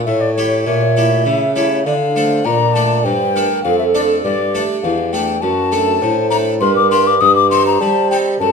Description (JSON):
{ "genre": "classical, baroque-style sonata movement with continuo", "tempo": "101 BPM", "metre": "3/4", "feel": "straight", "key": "D minor", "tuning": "A4 = 443 Hz", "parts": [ { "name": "baroque flute", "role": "melody", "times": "0.0-8.5 s", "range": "C#5 to Eb6", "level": "-17 LUFS", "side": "left 9 dB", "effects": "none" }, { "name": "harpsichord", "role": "accompaniment", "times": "0.0-8.5 s", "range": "E2 to A4", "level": "-19 LUFS", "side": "left 2 dB", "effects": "none" }, { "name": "dark bassoon", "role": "bass", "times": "0.0-8.5 s", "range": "E2 to G3", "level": "-19 LUFS", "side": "right 2 dB", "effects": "none" }, { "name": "mellow hollow baroque flute", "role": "second line", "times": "0.1-8.5 s", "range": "F#4 to E5", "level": "-19 LUFS", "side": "right 8 dB", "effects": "none" } ], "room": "moderate recital hall reverb, RT60 1.4 s", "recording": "none", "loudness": "-12 LUFS", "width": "side -5 dB against mid", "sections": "0.0-8.5 A section", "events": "none", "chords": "0.1 A7; 1.9 Dm; 3.6 Dm/F; 5.4 D/F#; 6.6 Gm; 7.2 Am7b5/G" }